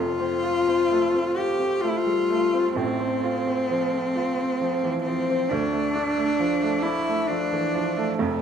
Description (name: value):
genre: classical, romantic duo for cello and grand piano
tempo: 66 BPM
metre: 3/4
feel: rubato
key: F major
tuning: A4 = 440 Hz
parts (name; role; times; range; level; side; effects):
- warm cello; melody; 0.0-8.4 s; A3 to G4; -23 LUFS; left 2 dB; none
- bright baby grand piano; accompaniment; 0.0-8.4 s; F1 to F4; -26 LUFS; right 3 dB; none
room: wet scoring stage reverb, RT60 1.7 s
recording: minimal, uncompressed stereo recording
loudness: -21 LUFS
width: side -8 dB against mid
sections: 0.0-8.4 A section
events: none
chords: 0.0 F; 2.8 F/A; 5.5 Dm